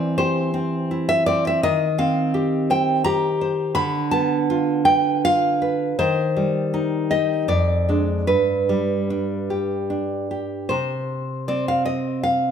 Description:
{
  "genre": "romantic piece for solo classical guitar",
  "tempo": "71-86 BPM",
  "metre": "3/4",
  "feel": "rubato",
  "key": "C minor",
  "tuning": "A4 = 442 Hz",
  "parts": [
    { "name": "nylon-string guitar", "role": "solo", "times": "0.0-12.5 s", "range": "F2 to B5", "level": "-19 LUFS", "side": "equal", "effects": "none" }
  ],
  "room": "moderate recital hall reverb, RT60 1.7 s",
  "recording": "none",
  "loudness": "-19 LUFS",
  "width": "side -8 dB against mid",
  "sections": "0.0-10.7 A section; 10.7-12.5 B section",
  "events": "none",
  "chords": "0.0 C/E; 1.6 Cm/Eb; 3.8 Bdim/D; 6.0 Cm/Eb; 7.5 Ddim/F; 8.3 G; 10.7 N.C.",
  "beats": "0.21 0.93 | 1.65 2.35 3.06 | 3.77 4.49 5.23 | 5.98 6.73 7.48 | 8.28 9.09 9.89 | 10.71 11.49 12.25"
}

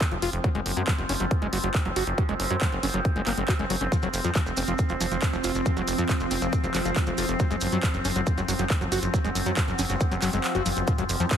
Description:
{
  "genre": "psychedelic trance",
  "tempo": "138 BPM",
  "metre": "4/4",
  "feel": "straight",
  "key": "unclear",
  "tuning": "A4 = 440 Hz",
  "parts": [
    { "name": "overtone-sweeping drone", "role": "sustained chords", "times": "0.0-11.4 s", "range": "F3 to C4", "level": "-30 LUFS", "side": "left 1 dB", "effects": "chorus, built-in reverb, sidechain pumping" },
    { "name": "big-room dance drum kit", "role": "drums", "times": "0.0-11.4 s", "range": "handclaps, hi-hat", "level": "-32 LUFS", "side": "equal", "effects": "none" },
    { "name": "electronic kick drum", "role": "drums", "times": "0.0-11.4 s", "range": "none", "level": "-25 LUFS", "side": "equal", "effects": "none" },
    { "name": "deep dark ambient pad", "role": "texture", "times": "0.2-11.4 s", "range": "C4 to Db6", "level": "-37 LUFS", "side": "right 4 dB", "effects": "chorus, built-in reverb, sidechain pumping" },
    { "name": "screaming distorted acid line", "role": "riff", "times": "0.1-11.4 s", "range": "F3 to Gb4", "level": "-32 LUFS", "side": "moving between left 8 dB and right 7 dB", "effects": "distortion, chorus, auto-pan, sidechain pumping, tape echo" },
    { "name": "plucky analog bass", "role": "bass", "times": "0.1-11.3 s", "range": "F1 to Gb2", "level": "-29 LUFS", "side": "equal", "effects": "none" },
    { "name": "maracas", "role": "percussion", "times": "3.9-11.4 s", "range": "none", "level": "-37 LUFS", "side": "right 4 dB", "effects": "none" },
    { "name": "swell and sub drop", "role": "sound effects", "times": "10.2-11.4 s", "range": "none", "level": "-38 LUFS", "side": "right 1 dB", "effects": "none" }
  ],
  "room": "light reverb",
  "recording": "heavily compressed radio sound, multiband compression",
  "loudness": "-23 LUFS",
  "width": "side -9 dB against mid",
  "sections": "0.0-10.9 A section",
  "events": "fade-in on ambient pad 0.0-10.9; swell 10.2-10.9; kick drops out 10.4-10.9; impact 10.9-11.4",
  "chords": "0.4 Gb5; 3.9 F5; 7.4 Gb5",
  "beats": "0.01 | 0.44 0.88 1.31 1.75 | 2.18 2.62 3.05 3.48 | 3.92 4.35 4.79 5.22 | 5.66 6.09 6.53 6.96 | 7.40 7.83 8.27 8.70 | 9.14 9.57 10.01 10.44 | 10.88 11.31"
}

